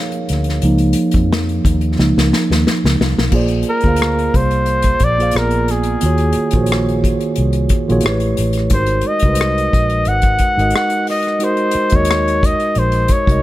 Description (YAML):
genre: R&B, neo-soul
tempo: 89 BPM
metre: 4/4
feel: swing 54% on 16ths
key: unclear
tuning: A4 = 440 Hz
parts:
  - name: mellow tine electric piano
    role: accompaniment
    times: 0.0-13.4 s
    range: Eb3 to F5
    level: -18 LUFS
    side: right 2 dB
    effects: none
  - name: unplugged drum kit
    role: drums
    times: 0.1-13.4 s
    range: crash cymbal, hi-hat, kick drum, rim click, snare drum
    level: -18 LUFS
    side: left 1 dB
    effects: none
  - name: vintage muted fingered electric bass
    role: bass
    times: 0.3-13.4 s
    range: Ab1 to F2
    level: -18 LUFS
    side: equal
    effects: none
  - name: warm flugelhorn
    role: melody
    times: 3.7-13.4 s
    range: Ab4 to Gb5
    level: -18 LUFS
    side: left 1 dB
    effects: none
room: light reverb, studio reverb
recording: none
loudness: -13 LUFS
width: side -15 dB against mid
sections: 0.0-3.3 A section; 3.3-13.4 B section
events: tine electric piano solo 0.0-3.3; drum fill 2.0-3.3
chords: 0.0 Db69; 3.3 Bb9; 5.3 Bb7b9; 6.0 Ebm11; 8.0 A9; 8.7 Ab7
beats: | 0.62 1.30 1.97 2.65 | 3.32 4.00 4.67 5.34 | 6.02 6.69 7.37 8.04 | 8.71 9.39 10.06 10.74 | 11.41 12.09 12.76